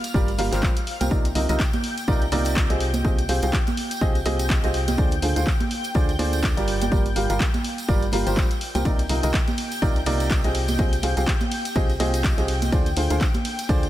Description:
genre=piano house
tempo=124 BPM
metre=4/4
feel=swing 57% on 16ths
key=C minor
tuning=A4 = 441 Hz
part: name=analog string pad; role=sustained chords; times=0.0-13.9 s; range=F5 to G6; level=-33 LUFS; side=left 2 dB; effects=ensemble chorus, sidechain pumping
part: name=punchy analog drum machine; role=drums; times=0.0-13.9 s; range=handclaps, hi-hat, ride cymbal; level=-31 LUFS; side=left 1 dB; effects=none
part: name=tambourine and congas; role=percussion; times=0.0-13.9 s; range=none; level=-32 LUFS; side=right 4 dB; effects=none
part: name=warm upright piano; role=riff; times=0.1-13.8 s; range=C3 to G5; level=-26 LUFS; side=right 1 dB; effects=sidechain pumping, dub echo
part: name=organ-like FM bass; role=bass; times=0.1-13.9 s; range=G1 to D2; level=-25 LUFS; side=equal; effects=tube saturation, sidechain pumping
part: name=electronic kick drum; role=drums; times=0.1-13.8 s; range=none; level=-22 LUFS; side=equal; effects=none
room=little or no reverb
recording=none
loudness=-20 LUFS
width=side -14 dB against mid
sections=0.0-13.9 A section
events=none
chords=0.0 Gm7; 1.1 Cm11; 2.8 Fm9/C; 5.0 Dm7b5; 6.7 Gm7; 8.9 Cm11; 10.5 Fm9/C; 12.7 Dm7b5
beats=0.14 0.63 | 1.11 1.59 2.08 2.56 | 3.05 3.53 4.01 4.50 | 4.98 5.47 5.95 6.43 | 6.92 7.40 7.88 8.37 | 8.85 9.34 9.82 10.30 | 10.79 11.27 11.76 12.24 | 12.72 13.21 13.69

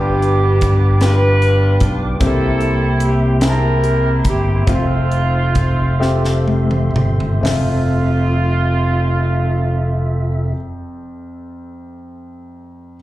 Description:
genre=slow gospel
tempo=40-50 BPM (dotted quarters)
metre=6/8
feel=straight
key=F major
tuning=A4 = 439 Hz
part: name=dark saxophone section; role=melody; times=0.0-10.6 s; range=A3 to B4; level=-20 LUFS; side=right 2 dB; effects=slapback echo, plate reverb
part: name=warm concert grand piano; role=accompaniment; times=0.0-13.0 s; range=F2 to A5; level=-23 LUFS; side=left 2 dB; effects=plate reverb, slapback echo
part: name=mellow tonewheel organ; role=sustained chords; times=0.0-10.5 s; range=Bb3 to D6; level=-27 LUFS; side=right 2 dB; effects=fast rotary speaker, chorus vibrato, plate reverb
part: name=modern bright fingered electric bass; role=bass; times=0.0-10.5 s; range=F1 to C2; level=-16 LUFS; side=equal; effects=none
part: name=crisp fusion drum kit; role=drums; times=0.2-7.7 s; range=hi-hat, kick drum, snare drum, toms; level=-19 LUFS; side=equal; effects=none
room=light reverb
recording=live gig heard through the venue's PA, club reverb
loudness=-13 LUFS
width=side -15 dB against mid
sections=0.0-7.4 A section; 7.4-10.4 B section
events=slowing down 2.2-7.4; drum fill 6.0-7.4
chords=0.0 G7; 2.2 C7; 4.7 Fmaj7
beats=1.02 | 2.21 3.42 | 4.67 6.00 | 7.44 8.94

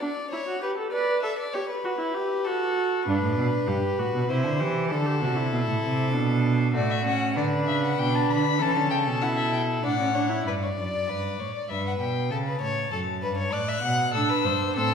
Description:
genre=classical, baroque-style fugue for string quartet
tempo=98 BPM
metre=3/4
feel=straight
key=G major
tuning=A4 = 439 Hz
part: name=rich violin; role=second line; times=0.0-14.9 s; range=F#4 to F#5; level=-29 LUFS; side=left 3 dB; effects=none
part: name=rich viola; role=accompaniment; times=0.0-10.5, 14.2-14.9 s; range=A3 to B4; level=-28 LUFS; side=right 3 dB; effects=none
part: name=rich cello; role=bass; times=3.1-14.9 s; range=F#2 to E3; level=-27 LUFS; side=right 2 dB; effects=none
part: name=warm violin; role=melody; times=6.8-14.9 s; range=B4 to F#6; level=-29 LUFS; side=left 7 dB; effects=none
room=wet recital hall reverb, RT60 1.4 s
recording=heard from further back in the room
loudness=-23 LUFS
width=side -6 dB against mid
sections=0.0-10.5 A section; 10.5-14.9 B section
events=none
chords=0.0 D; 0.6 G; 1.2 A7(no3) (rootless); 2.5 F#m; 3.1 G; 4.3 C; 4.9 D7; 6.1 Bm7; 6.7 D/A; 8.0 G/B; 8.6 A; 9.8 D/A; 10.5 G; 11.7 Em/G; 12.3 A; 13.5 F#m/A; 14.1 Am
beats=0.00 0.62 | 1.23 1.84 2.45 | 3.06 3.68 4.29 | 4.90 5.51 6.13 | 6.75 7.36 7.98 | 8.60 9.22 9.84 | 10.46 11.08 11.70 | 12.31 12.92 13.53 | 14.14 14.76

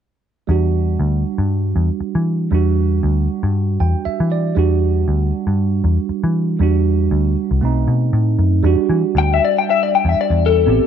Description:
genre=straight-eighth soul blues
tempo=118 BPM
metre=4/4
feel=swing 55% on 16ths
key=E minor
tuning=A4 = 443 Hz
part: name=tine electric piano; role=accompaniment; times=0.5-10.9 s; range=G3 to G5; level=-20 LUFS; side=right 13 dB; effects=phaser
part: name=vintage muted picked electric bass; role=bass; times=0.5-10.8 s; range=A1 to E3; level=-16 LUFS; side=left 1 dB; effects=none
part: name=electric guitar through a small old amp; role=melody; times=9.2-10.9 s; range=A4 to G5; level=-15 LUFS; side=left 12 dB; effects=analog chorus
room=digital ambience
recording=1960s-style stereo with parts hard left and right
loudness=-15 LUFS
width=side -8 dB against mid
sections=0.5-8.6 A section; 8.6-10.9 B section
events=tine electric piano fill 3.5-4.6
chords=0.5 Em9; 7.6 B7b9; 8.6 Em7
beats=| 0.49 1.00 1.51 2.02 | 2.53 3.04 3.55 4.06 | 4.57 5.08 5.59 6.09 | 6.61 7.11 7.62 8.13 | 8.64 9.15 9.66 10.17 | 10.68

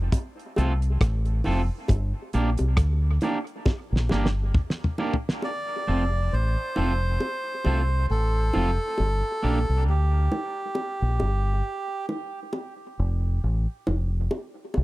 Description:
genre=dub reggae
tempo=68 BPM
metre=4/4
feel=swing 57% on 16ths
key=G minor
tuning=A4 = 440 Hz
part: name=deep dub fingered electric bass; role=bass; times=0.0-14.8 s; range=F1 to D2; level=-23 LUFS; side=equal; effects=none
part: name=damped 70s drum kit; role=drums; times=0.1-5.5 s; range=hi-hat, kick drum, rim click, snare drum, toms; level=-23 LUFS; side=equal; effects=none
part: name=bongos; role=percussion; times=0.1-14.8 s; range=none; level=-32 LUFS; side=equal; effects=dub echo
part: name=electric guitar at the edge of break-up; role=accompaniment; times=0.6-9.6 s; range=A3 to Bb4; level=-32 LUFS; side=right 2 dB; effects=dub echo
part: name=melodica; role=melody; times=5.4-12.1 s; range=G4 to D5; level=-30 LUFS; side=right 1 dB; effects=dub echo
room=little or no reverb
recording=dry, close 1970s-style studio recording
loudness=-23 LUFS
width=side -18 dB against mid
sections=0.0-5.4 A section; 5.4-14.8 B section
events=break 0.0-5.4; drum fill 3.7-5.4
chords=0.0 F; 1.9 Gm; 5.4 F; 9.0 Gm; 12.5 N.C.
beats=0.12 1.00 | 1.89 2.77 3.66 4.55 | 5.43 6.32 7.21 8.10 | 8.98 9.87 10.76 11.64 | 12.53 13.42 14.31

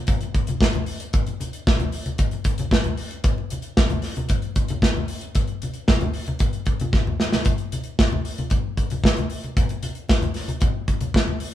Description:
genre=disco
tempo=114 BPM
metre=4/4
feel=straight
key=none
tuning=none
part: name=modern studio drum kit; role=drums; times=0.1-11.5 s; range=hi-hat, kick drum, snare drum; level=-20 LUFS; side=equal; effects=none
part: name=congas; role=percussion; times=0.1-11.4 s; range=none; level=-29 LUFS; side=left 1 dB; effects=none
room=moderate studio reverb, RT60 0.8 s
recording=band playing live in one room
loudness=-20 LUFS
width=side -12 dB against mid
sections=0.0-7.5 A section; 7.5-11.5 B section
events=drum fill 6.9-7.5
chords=none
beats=0.08 0.61 | 1.14 1.67 2.19 2.72 | 3.25 3.78 4.30 4.83 | 5.36 5.89 6.41 6.94 | 7.47 7.99 8.52 9.05 | 9.57 10.10 10.63 11.15

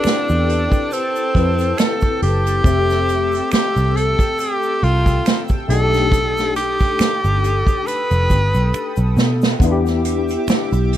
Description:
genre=R&B, neo-soul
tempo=69 BPM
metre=4/4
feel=swing 56% on 16ths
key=A minor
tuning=A4 = 440 Hz
part: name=breathy tenor saxophone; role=melody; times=0.0-9.2 s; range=C4 to B4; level=-20 LUFS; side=equal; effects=none
part: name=barky tine electric piano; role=accompaniment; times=0.0-11.0 s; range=A3 to E5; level=-24 LUFS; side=left 6 dB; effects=ensemble chorus
part: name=chorused pulse-width pad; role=sustained chords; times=0.0-11.0 s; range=G4 to E6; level=-27 LUFS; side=left 1 dB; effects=none
part: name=vintage muted picked electric bass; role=bass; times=0.0-11.0 s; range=F1 to B2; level=-18 LUFS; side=equal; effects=none
part: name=finger snaps and egg shaker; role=percussion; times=0.0-10.9 s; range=none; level=-34 LUFS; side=right 5 dB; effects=none
part: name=unplugged drum kit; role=drums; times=0.1-11.0 s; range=hi-hat, kick drum, snare drum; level=-19 LUFS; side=right 1 dB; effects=none
room=little or no reverb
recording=none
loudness=-15 LUFS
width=side -12 dB against mid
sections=0.0-11.0 A section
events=drum fill 8.7-9.6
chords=0.0 Am9; 2.6 Fmaj9; 5.7 B7alt; 9.6 Em7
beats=0.04 0.91 1.78 | 2.65 3.52 4.39 5.26 | 6.13 7.00 7.87 8.73 | 9.60 10.47

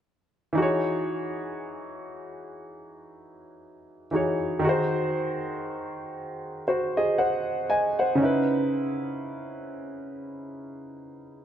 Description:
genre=R&B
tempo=59 BPM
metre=4/4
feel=swing 58% on 16ths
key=E major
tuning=A4 = 440 Hz
part: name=clear grand piano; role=accompaniment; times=0.5-11.4 s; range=C#3 to G#5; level=-26 LUFS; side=equal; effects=none
room=moderate plate reverb, RT60 2.5 s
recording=dark, warm production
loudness=-24 LUFS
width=side -9 dB against mid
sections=0.6-11.4 A section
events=none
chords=0.6 Emaj13; 4.6 G#7/D#; 8.2 C#m9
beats=| 0.57 1.58 2.60 3.62 | 4.64 5.65 6.67 7.69 | 8.70 9.72 10.74

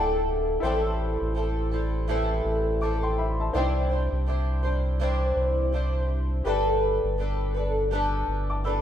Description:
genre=acoustic pop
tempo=82 BPM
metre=4/4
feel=swing 60% on 16ths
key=C major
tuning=A4 = 438 Hz
part: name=clear upright piano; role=accompaniment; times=0.0-8.8 s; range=Eb4 to E6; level=-33 LUFS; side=left 3 dB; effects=none
part: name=fingerpicked twelve-string acoustic guitar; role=accompaniment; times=0.0-8.8 s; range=A2 to C5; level=-27 LUFS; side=equal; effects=double-tracked left and right
part: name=sub bass with octave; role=bass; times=0.0-8.8 s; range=D1 to C2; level=-27 LUFS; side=equal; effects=none
room=light reverb, small room ambience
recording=rough home demo mix, lossy compression artefacts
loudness=-23 LUFS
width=side -10 dB against mid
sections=0.0-8.8 A section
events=none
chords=0.0 Dsus2; 0.6 Am7; 3.5 Cadd9; 6.5 Gadd9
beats=| 0.63 1.36 2.09 2.81 | 3.54 4.27 5.00 5.73 | 6.46 7.19 7.92 8.65

